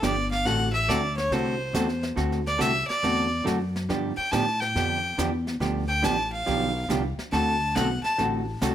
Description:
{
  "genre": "country, western swing",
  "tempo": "140 BPM",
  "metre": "4/4",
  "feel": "swing 67% on 8ths",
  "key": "D mixolydian",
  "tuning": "A4 = 440 Hz",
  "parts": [
    { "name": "clear fiddle", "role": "melody", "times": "0.0-8.2 s", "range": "C5 to A5", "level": "-26 LUFS", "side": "equal", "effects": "none" },
    { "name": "vintage hollow-body jazz guitar", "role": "accompaniment", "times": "0.0-8.7 s", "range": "D3 to A4", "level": "-28 LUFS", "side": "right 2 dB", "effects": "none" },
    { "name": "upright bass", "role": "bass", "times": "0.0-8.7 s", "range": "G1 to A2", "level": "-29 LUFS", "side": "left 1 dB", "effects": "none" },
    { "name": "jazz brush drum kit", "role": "drums", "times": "0.0-8.7 s", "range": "brushed snare drum, hi-hat, snare drum", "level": "-35 LUFS", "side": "equal", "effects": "none" }
  ],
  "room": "light reverb",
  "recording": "none",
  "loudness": "-23 LUFS",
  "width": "side -10 dB against mid",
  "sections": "0.0-8.7 A section",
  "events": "fiddle solo 0.0-8.7",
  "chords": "0.5 D9; 3.9 G9; 7.3 D7"
}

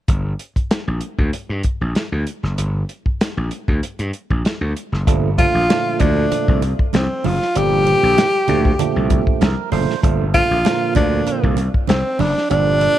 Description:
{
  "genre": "funk",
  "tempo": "97 BPM",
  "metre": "4/4",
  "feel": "straight",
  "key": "G minor",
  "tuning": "A4 = 440 Hz",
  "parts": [
    { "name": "gritty slap bass", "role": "bass", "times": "0.1-12.9 s", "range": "F#1 to G2", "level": "-20 LUFS", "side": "left 1 dB", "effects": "overdrive" },
    { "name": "warm soul drum kit", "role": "drums", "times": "0.1-13.0 s", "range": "hi-hat, kick drum, snare drum", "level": "-20 LUFS", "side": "equal", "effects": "none" },
    { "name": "percussive tonewheel organ", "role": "stabs", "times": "5.1-13.0 s", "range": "Bb2 to C5", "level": "-22 LUFS", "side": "right 10 dB", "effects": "overdrive, tape echo" },
    { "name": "congas", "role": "percussion", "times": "5.1-13.0 s", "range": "none", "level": "-27 LUFS", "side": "right 9 dB", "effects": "none" },
    { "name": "breathy tenor saxophone", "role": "melody", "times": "5.4-13.0 s", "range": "C4 to G4", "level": "-18 LUFS", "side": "left 1 dB", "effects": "tape echo" }
  ],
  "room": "studio reverb",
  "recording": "1960s-style stereo",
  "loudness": "-15 LUFS",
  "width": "side -12 dB against mid",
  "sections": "0.1-5.1 A section; 5.1-13.0 B section",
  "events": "tonewheel organ fill 9.1-10.0",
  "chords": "0.1 Gm; 5.1 Gm7"
}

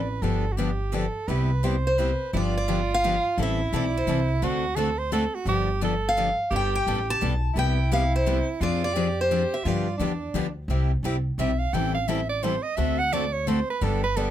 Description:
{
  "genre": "acoustic string swing (jazz manouche)",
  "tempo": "172 BPM",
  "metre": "3/4",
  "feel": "swing 62% on 8ths",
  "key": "C major",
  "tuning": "A4 = 439 Hz",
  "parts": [
    { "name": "picked steel-string acoustic guitar", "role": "melody", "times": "0.0-10.4 s", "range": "C5 to A5", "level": "-26 LUFS", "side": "equal", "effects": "none" },
    { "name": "clear soprano saxophone", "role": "second line", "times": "0.0-14.3 s", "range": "D4 to G5", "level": "-29 LUFS", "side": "right 5 dB", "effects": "none" },
    { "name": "upright bass", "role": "bass", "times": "0.0-14.3 s", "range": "G1 to G2", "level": "-27 LUFS", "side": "equal", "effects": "none" },
    { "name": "picked steel-string acoustic guitar", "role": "accompaniment", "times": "0.2-14.3 s", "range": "C3 to A4", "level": "-29 LUFS", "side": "left 8 dB", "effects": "none" },
    { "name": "picked steel-string acoustic guitar", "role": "accompaniment", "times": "0.2-14.3 s", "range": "C3 to A4", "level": "-33 LUFS", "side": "right 7 dB", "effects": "none" }
  ],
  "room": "light reverb",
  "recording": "close, detailed microphones",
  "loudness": "-22 LUFS",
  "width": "side -11 dB against mid",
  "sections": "0.0-2.3 A section; 2.3-10.7 B section; 10.7-14.3 C section",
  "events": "soprano saxophone solo 10.7-14.3",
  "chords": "0.2 G7; 1.3 Cmaj7; 2.3 G7; 3.4 Am7; 4.4 D7; 5.5 G7; 6.5 Gadd9; 7.6 Cmaj7; 8.6 Fm6; 9.6 G7; 10.7 C; 11.7 Am7; 12.8 D7"
}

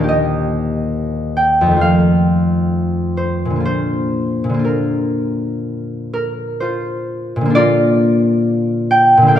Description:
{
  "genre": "classical, solo harp piece",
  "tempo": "60-72 BPM",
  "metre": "4/4",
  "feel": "rubato",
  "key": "Bb major",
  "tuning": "A4 = 438 Hz",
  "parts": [
    { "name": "concert harp", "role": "solo", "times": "0.0-9.4 s", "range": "Eb2 to Bb5", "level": "-14 LUFS", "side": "equal", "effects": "none" }
  ],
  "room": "moderate scoring stage reverb, RT60 1.9 s",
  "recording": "none",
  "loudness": "-14 LUFS",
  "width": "side -10 dB against mid",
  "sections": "0.0-7.5 A section; 7.5-9.4 A section",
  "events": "none",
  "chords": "0.1 Eb; 1.8 F7; 3.7 Bb"
}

